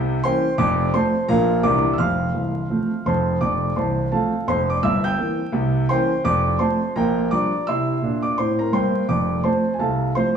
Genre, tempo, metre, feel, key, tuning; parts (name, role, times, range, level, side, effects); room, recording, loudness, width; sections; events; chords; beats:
jazz, stride piano; 169 BPM; 4/4; swing 60% on 8ths; F major; A4 = 440 Hz
warm concert grand piano; solo; 0.0-10.4 s; C1 to G6; -18 LUFS; right 1 dB
wet stone room reverb, RT60 1.2 s; band playing live in one room, vinyl crackle, small room ambience; -18 LUFS; side -7 dB against mid
0.0-3.4 A section; 3.4-10.4 A section
0.0 C7b9; 0.6 F; 1.3 Bb; 1.6 C9; 2.0 F; 4.8 C7/G; 5.5 C7b9; 6.2 F; 7.0 Bb6; 7.7 C; 9.1 F
0.23 | 0.58 0.94 1.29 1.65 | 2.00 2.35 2.71 3.06 | 3.42 3.77 4.12 4.48 | 4.83 5.19 5.54 5.90 | 6.25 6.61 6.96 7.31 | 7.67 8.02 8.38 8.73 | 9.09 9.44 9.79 10.15